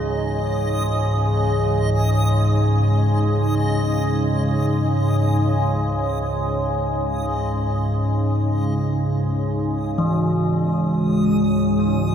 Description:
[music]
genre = dark ambient drone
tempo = free time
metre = none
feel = none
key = C# minor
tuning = A4 = 440 Hz
[part]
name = quartz singing bowl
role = arpeggios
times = 0.0-12.1 s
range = E3 to G#4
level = -26 LUFS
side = equal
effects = tape echo
[part]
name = organ-like drone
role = drone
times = 0.0-12.1 s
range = C#2 to G#2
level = -19 LUFS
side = equal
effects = ensemble chorus, built-in reverb
[part]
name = backwards swelling texture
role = texture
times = 0.0-12.1 s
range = D#5 to D#6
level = -32 LUFS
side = equal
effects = built-in reverb
[part]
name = deep dark ambient pad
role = sustained chords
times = 10.8-12.1 s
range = G#3 to C#5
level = -20 LUFS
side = equal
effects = chorus, built-in reverb
[sound]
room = wet huge ambient reverb, RT60 7.5 s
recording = none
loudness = -18 LUFS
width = side -8 dB against mid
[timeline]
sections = 0.0-10.0 A section; 10.0-12.1 B section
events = fade-out on synth texture 0.0-10.0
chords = 0.0 C#madd9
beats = free time

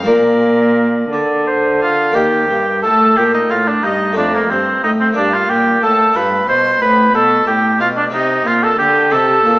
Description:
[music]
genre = classical, baroque-style sonata movement with continuo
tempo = 60 BPM (dotted quarters)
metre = 6/8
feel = straight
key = unclear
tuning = A4 = 441 Hz
[part]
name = clear violin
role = melody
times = 0.0-9.6 s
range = Bb4 to C6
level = -23 LUFS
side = left 1 dB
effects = none
[part]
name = harpsichord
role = accompaniment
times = 0.0-9.6 s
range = Eb2 to Bb4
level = -19 LUFS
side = left 1 dB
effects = none
[part]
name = warm cello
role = bass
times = 0.0-9.6 s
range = Eb2 to D3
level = -18 LUFS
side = equal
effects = none
[part]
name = clear oboe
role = second line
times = 0.1-9.6 s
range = Bb3 to D5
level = -13 LUFS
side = right 1 dB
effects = none
[sound]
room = wet recital hall reverb, RT60 1.8 s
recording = small speaker sound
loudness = -11 LUFS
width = side -21 dB against mid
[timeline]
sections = 0.0-2.2 A section; 2.2-9.6 A section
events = none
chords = 0.1 Bb; 2.2 Eb; 4.2 F7; 5.2 Gm; 6.2 G7; 8.1 Cm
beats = | 0.07 1.13 | 2.17 3.17 | 4.17 5.17 | 6.16 7.14 | 8.13 9.12

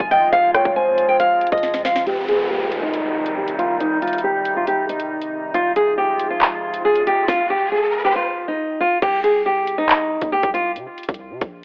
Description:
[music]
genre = hip hop, drill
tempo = 138 BPM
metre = 4/4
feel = half-time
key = C minor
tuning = A4 = 441 Hz
[part]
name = nylon-string guitar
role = melody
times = 0.0-10.7 s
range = Eb4 to Ab5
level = -21 LUFS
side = equal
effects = low-pass filter, cassette tape, analog delay
[part]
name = glassy FM pad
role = sustained chords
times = 0.0-7.3 s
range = C3 to F4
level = -30 LUFS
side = equal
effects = ensemble chorus, built-in reverb, low-pass filter, cassette tape
[part]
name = long sustained 808-style bass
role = bass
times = 0.0-2.1, 9.0-11.6 s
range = Eb1 to C3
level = -40 LUFS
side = equal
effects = none
[part]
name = drill drum kit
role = drums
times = 0.0-11.5 s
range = crash cymbal, handclaps, hi-hat, kick drum, rim click, snare drum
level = -24 LUFS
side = equal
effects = cassette tape
[part]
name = soft octave-layered synth lead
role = second line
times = 0.1-1.2 s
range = C5 to Eb5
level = -24 LUFS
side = equal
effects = chorus, cassette tape, analog delay
[part]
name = downlifter and riser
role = sound effects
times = 2.1-8.2 s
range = none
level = -31 LUFS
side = equal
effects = none
[sound]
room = light reverb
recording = home recording on cassette, telephone sound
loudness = -19 LUFS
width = mono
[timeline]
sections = 0.0-2.1 A section; 2.1-9.0 B section; 9.0-11.6 C section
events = drum fill 1.6-2.1; filter sweep 2.1-9.0; riser 6.8-9.0; break 10.8-11.6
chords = 0.0 Fm; 2.1 Cm; 5.5 Fm; 9.0 C5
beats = | 0.33 0.76 1.20 1.63 | 2.07 2.50 2.94 3.37 | 3.81 4.24 4.67 5.11 | 5.54 5.98 6.41 6.85 | 7.28 7.72 8.15 8.59 | 9.02 9.46 9.89 10.33 | 10.76 11.20 11.63

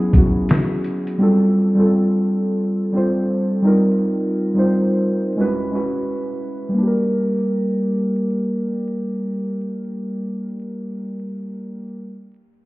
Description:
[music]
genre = lo-fi hip hop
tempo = 86 BPM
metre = 4/4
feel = swing 64% on 16ths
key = G minor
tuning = A4 = 440 Hz
[part]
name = muted felt-like synth keys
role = accompaniment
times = 0.0-12.1 s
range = F#3 to C5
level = -18 LUFS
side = equal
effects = chorus, low-pass filter
[part]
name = trip hop sampler-style drum kit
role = drums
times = 0.1-1.2 s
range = hi-hat, kick drum, snare drum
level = -15 LUFS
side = equal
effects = vintage 12-bit sampler grit
[sound]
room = moderate plate reverb, RT60 3.1 s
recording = heard muffled through a wall, club reverb, vinyl crackle, EQ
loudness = -17 LUFS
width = side -20 dB against mid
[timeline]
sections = 0.0-6.8 A section; 6.8-9.6 B section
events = none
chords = 0.0 F#9sus4; 1.2 G9sus4; 3.6 F9sus4; 5.4 F#9sus4; 6.8 Gm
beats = 0.49 | 1.18 1.88 2.58 3.28 | 3.97 4.67 5.37 6.07 | 6.76 7.46 8.16 8.86

